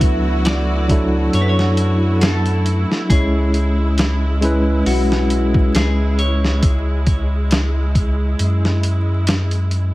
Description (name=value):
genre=trip hop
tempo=68 BPM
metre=4/4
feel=swing 55% on 16ths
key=C# phrygian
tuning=A4 = 440 Hz
part: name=clean electric guitar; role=melody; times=0.0-7.9 s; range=F#4 to E5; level=-26 LUFS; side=left 2 dB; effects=vintage 12-bit sampler grit, dub echo
part: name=bell-like tine electric piano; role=accompaniment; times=0.0-6.6 s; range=F#3 to C#5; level=-20 LUFS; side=equal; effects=harmonic tremolo, tape echo
part: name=rich symphonic string section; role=sustained chords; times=0.0-9.9 s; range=G#3 to F#4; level=-25 LUFS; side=right 1 dB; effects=vintage 12-bit sampler grit
part: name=soft dub sub bass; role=bass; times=0.0-9.9 s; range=B1 to F#2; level=-18 LUFS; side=equal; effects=none
part: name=dusty soul sampler-style drum kit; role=drums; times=0.0-9.9 s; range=hi-hat, kick drum, snare drum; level=-18 LUFS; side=equal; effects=none
room=light reverb, digital ambience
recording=vinyl crackle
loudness=-14 LUFS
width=side -18 dB against mid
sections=0.0-9.9 A section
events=filter sweep on tine electric piano 0.0-6.6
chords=0.0 D69; 3.1 C#m